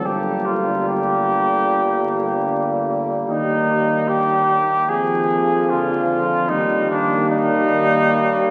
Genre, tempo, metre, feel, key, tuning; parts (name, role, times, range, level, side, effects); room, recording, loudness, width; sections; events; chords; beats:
classical, brass quintet; 75 BPM; 4/4; straight; G minor; A4 = 435 Hz
mellow trumpet; melody; 0.0-8.5 s; D4 to Ab4; -22 LUFS; equal
mellow flugelhorn; second line; 0.0-8.5 s; Bb3; -28 LUFS; equal
clear French horn; accompaniment; 0.0-8.5 s; F3 to G3; -26 LUFS; equal
warm trombone; accompaniment; 0.0-8.5 s; D3 to Eb3; -32 LUFS; equal
warm tuba; bass; 0.0-8.5 s; G1 to F2; -28 LUFS; equal
wet cathedral reverb, RT60 4.3 s; very old 78 rpm record, vinyl crackle; -19 LUFS; mono
0.0-8.5 A section
0.1 Gm; 3.3 Eb; 4.9 Bb7/F; 6.5 Eb
| 0.05 0.86 1.67 2.47 | 3.28 4.08 4.88 5.69 | 6.49 7.29 8.08